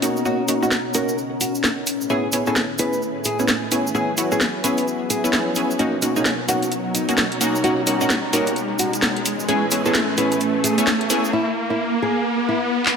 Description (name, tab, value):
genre	UK garage, two-step garage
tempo	130 BPM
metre	4/4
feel	swing 61% on 16ths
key	B major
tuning	A4 = 441 Hz
part	soft string machine	sustained chords	0.0-11.3 s	A2 to B4	-30 LUFS	equal	ensemble chorus
part	punchy chord stab	stabs	0.0-11.2 s	A#3 to B4	-22 LUFS	equal	chorus
part	garage drum kit	drums	0.0-12.9 s	handclaps, hi-hat, rim click, snare drum	-22 LUFS	equal	none
part	cabasa	percussion	0.0-11.3 s	none	-29 LUFS	right 2 dB	none
part	riser	sound effects	1.2-13.0 s	none	-26 LUFS	equal	none
part	warbly tape-like pad	texture	0.0-11.3 s	A3 to A#5	-28 LUFS	left 3 dB	chorus, built-in reverb
part	nylon-string guitar	melody	0.3-12.6 s	D#4 to B4	-26 LUFS	equal	ping-pong delay
room	moderate lush hall reverb, RT60 1.7 s, digital ambience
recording	none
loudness	-18 LUFS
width	side -6 dB against mid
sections	0.0-13.0 A section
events	build-up 0.0-13.0; riser 1.2-13.0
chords	0.0 Bmaj9; 1.9 Amaj7; 3.9 F#9sus4; 5.8 Bmaj9; 9.3 Amaj7; 11.3 N.C.